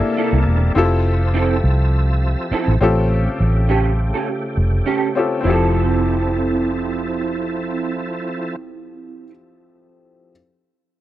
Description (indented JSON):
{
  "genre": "lush 1970s-style soul",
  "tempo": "102 BPM",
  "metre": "4/4",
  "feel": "swing 54% on 16ths",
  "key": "F major",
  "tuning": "A4 = 439 Hz",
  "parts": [
    { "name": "clear concert grand piano", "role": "accompaniment", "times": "0.0-10.3 s", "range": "F3 to A4", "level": "-22 LUFS", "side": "left 4 dB", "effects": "none" },
    { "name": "overdriven tonewheel organ", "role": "sustained chords", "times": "0.0-8.6 s", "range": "C3 to E5", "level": "-27 LUFS", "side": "right 1 dB", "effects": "slow rotary speaker, chorus vibrato" },
    { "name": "electric guitar through a small old amp", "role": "riff", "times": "0.2-9.3 s", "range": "Bb3 to A4", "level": "-22 LUFS", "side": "right 5 dB", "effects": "ensemble chorus" },
    { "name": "vintage muted fingered electric bass", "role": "bass", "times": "0.3-9.3 s", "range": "E1 to C2", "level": "-17 LUFS", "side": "equal", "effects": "none" }
  ],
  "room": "little or no reverb",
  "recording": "dry, close 1970s-style studio recording",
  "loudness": "-16 LUFS",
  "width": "side -14 dB against mid",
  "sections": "0.8-5.5 A section; 5.5-7.8 B section",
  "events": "none",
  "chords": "0.0 C13; 0.8 Fmaj7; 2.8 A7alt; 5.5 Fmaj7"
}